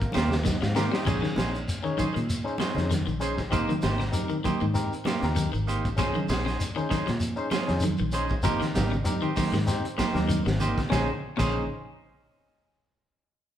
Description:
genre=afrobeat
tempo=97 BPM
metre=4/4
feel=swing 54% on 16ths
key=Bb dorian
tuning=A4 = 441 Hz
part: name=brilliant trombone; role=second line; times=0.0-0.5 s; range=Bb3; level=-40 LUFS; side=equal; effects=none
part: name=fingered electric bass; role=bass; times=0.0-11.7 s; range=Ab1 to Bb2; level=-30 LUFS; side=equal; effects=none
part: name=crunchy breakbeat drum kit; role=drums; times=0.0-11.5 s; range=crash cymbal, hi-hat, kick drum, snare drum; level=-32 LUFS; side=equal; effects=none
part: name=shekere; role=percussion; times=0.0-11.5 s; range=none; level=-34 LUFS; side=left 1 dB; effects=none
part: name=electric guitar at the edge of break-up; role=arpeggios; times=0.1-11.6 s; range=Bb2 to G3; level=-33 LUFS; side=left 5 dB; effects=spring reverb
part: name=semi-hollow electric guitar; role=stabs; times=0.1-11.6 s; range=Bb3 to C5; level=-31 LUFS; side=right 3 dB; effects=spring reverb
part: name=congas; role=percussion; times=0.1-11.5 s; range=none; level=-34 LUFS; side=right 4 dB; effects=none
part: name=barky tine electric piano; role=accompaniment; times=0.5-11.7 s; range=C4 to G5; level=-33 LUFS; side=left 2 dB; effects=overdrive
room=moderate large studio reverb, RT60 1.0 s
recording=band playing live in one room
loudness=-24 LUFS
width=side -10 dB against mid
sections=0.0-1.1 A section; 1.1-10.9 B section; 10.9-13.4 C section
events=tine electric piano fill 0.1-1.1; drum fill 0.4-1.1, 10.1-10.9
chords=0.0 Abmaj9; 1.1 Bbm11; 3.5 Abmaj9; 6.0 Bbm11; 8.4 Abmaj9; 10.9 Bbm11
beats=0.45 | 1.06 1.68 2.29 2.91 | 3.52 4.14 4.75 5.37 | 5.99 6.60 7.22 7.83 | 8.45 9.06 9.68 10.30 | 10.91 11.53

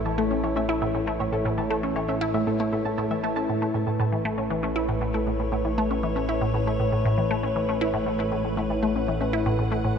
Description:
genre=ambient, sequencer-driven space music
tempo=118 BPM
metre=4/4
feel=straight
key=A major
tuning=A4 = 438 Hz
part: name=evolving wavetable pad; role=sustained chords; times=0.0-10.0 s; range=A3 to F#5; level=-27 LUFS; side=left 1 dB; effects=chorus, built-in reverb
part: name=resonant blip pluck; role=riff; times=0.0-9.9 s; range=A2 to E4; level=-26 LUFS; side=equal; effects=phaser, ping-pong delay
part: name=analog drone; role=bass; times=0.0-10.0 s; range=A1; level=-32 LUFS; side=equal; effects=chorus
part: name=bubbling stepped-filter texture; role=texture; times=0.0-3.5 s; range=C#5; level=-43 LUFS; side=right 4 dB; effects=none
part: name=soft round pluck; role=arpeggios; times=0.1-9.9 s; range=A4 to A5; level=-35 LUFS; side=equal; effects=chorus, auto-pan, ping-pong delay
room=moderate huge ambient reverb, RT60 7.8 s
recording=none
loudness=-23 LUFS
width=side -7 dB against mid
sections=0.0-3.5 A section; 3.5-10.0 B section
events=none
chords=0.0 A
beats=0.44 0.95 | 1.45 1.96 2.47 2.98 | 3.49 4.00 4.50 5.01 | 5.52 6.03 6.54 7.05 | 7.56 8.06 8.57 9.08 | 9.59

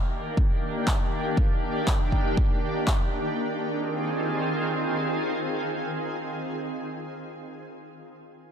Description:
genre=progressive house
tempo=120 BPM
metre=4/4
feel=straight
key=F dorian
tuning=A4 = 440 Hz
part: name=shimmering ambient pad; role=sustained chords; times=0.0-6.6 s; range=Eb3 to Ab4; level=-28 LUFS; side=equal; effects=chorus, built-in reverb, sidechain pumping
part: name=electronic kick drum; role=drums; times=0.4-3.0 s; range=none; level=-24 LUFS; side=equal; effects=none
part: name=electronic handclaps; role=drums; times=0.9-3.0 s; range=none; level=-33 LUFS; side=left 1 dB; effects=none
room=moderate lush hall reverb, RT60 2.0 s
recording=dark, warm production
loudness=-24 LUFS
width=side -8 dB against mid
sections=0.0-3.4 A section; 3.4-7.4 B section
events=none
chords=0.0 Ebmaj7; 3.4 Fm7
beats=0.37 0.87 | 1.37 1.87 2.37 2.87 | 3.37 3.87 4.37 4.87 | 5.37 5.87 6.37

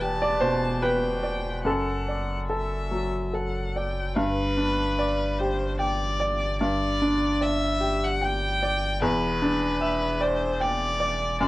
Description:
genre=neoclassical piano and strings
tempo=74 BPM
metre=3/4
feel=rubato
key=G major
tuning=A4 = 440 Hz
part: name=rich violin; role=melody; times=0.0-11.5 s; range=B4 to A5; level=-29 LUFS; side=left 1 dB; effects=cassette tape
part: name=bright upright piano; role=accompaniment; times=0.0-11.5 s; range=E2 to G5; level=-25 LUFS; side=equal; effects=cassette tape
part: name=pure sine sub bass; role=bass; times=0.0-11.5 s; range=E1 to G1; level=-32 LUFS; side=equal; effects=none
room=wet booth ambience, RT60 0.2 s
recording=home recording on cassette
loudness=-23 LUFS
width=side -18 dB against mid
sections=0.0-4.2 A section; 4.2-11.5 B section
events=none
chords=0.0 Em7; 1.7 D/F#; 4.2 G; 9.0 Em7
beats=0.01 0.82 | 1.66 2.51 3.35 | 4.18 4.99 5.80 | 6.61 7.42 8.22 | 9.02 9.82 10.61 | 11.40

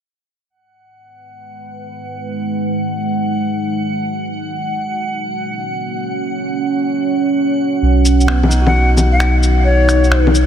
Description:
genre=future garage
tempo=free time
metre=none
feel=none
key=G# minor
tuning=A4 = 444 Hz
part: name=deep dark ambient pad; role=sustained chords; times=1.6-10.5 s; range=G#3 to F#5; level=-19 LUFS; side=right 2 dB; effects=chorus, built-in reverb
part: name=drifting glass-harmonics texture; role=texture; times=1.3-10.5 s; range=F#5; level=-26 LUFS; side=equal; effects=chorus, built-in reverb
part: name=warm sub bass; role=bass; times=7.8-10.5 s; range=B1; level=-12 LUFS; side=equal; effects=tube saturation
part: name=electronic shaker, finger snaps and bongos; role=drums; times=8.1-10.5 s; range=none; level=-19 LUFS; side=left 2 dB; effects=studio reverb
part: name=barky tine electric piano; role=accompaniment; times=8.3-10.5 s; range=B3 to F#4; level=-23 LUFS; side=right 1 dB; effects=vintage 12-bit sampler grit, tape echo
part: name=jazz flute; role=melody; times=8.7-10.3 s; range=C#5 to F#5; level=-18 LUFS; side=left 2 dB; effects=analog delay
room=moderate huge ambient reverb, RT60 7.8 s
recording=dreamy mix soaked in reverb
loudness=-14 LUFS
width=side -9 dB against mid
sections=0.5-10.5 A section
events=filter sweep on ambient pad 0.5-10.5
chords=0.5 G#m7; 4.2 F#; 7.8 B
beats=free time

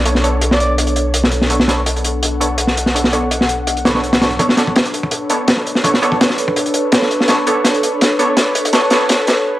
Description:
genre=drum and bass, jungle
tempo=166 BPM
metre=4/4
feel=swing 53% on 16ths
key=B minor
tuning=A4 = 440 Hz
part: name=warbly tape-like pad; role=sustained chords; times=0.0-9.6 s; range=B3 to F#5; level=-20 LUFS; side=equal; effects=chorus, built-in reverb, phaser
part: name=long sustained 808-style bass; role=bass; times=0.0-4.4 s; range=B1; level=-20 LUFS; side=equal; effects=none
part: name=orchestra-hit-like synth stab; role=stabs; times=0.1-9.0 s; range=B3 to C#5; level=-20 LUFS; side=right 1 dB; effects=built-in reverb, dub echo
part: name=crunchy breakbeat drum kit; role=drums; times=0.1-9.4 s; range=hi-hat, kick drum, snare drum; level=-15 LUFS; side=equal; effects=high-pass filter on kick, high-pass filter on hats, high-pass filter on snare, high-pass filter on room
part: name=breathy flute-like synth lead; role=melody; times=0.5-0.7 s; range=D5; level=-24 LUFS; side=right 1 dB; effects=chorus, dub echo
room=light reverb, studio ambience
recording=dry, gritty hardware recording, transformer saturation, vinyl crackle, high-pass filter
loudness=-12 LUFS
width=side -15 dB against mid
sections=0.0-4.4 A section; 4.4-9.6 B section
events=build-up 4.4-9.6; drum fill 7.3-9.5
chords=0.0 Bm9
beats=| 0.06 0.42 0.78 1.14 | 1.50 1.86 2.23 2.59 | 2.95 3.31 3.67 4.03 | 4.39 4.75 5.12 5.48 | 5.84 6.20 6.56 6.92 | 7.29 7.65 8.01 8.37 | 8.73 9.09 9.45

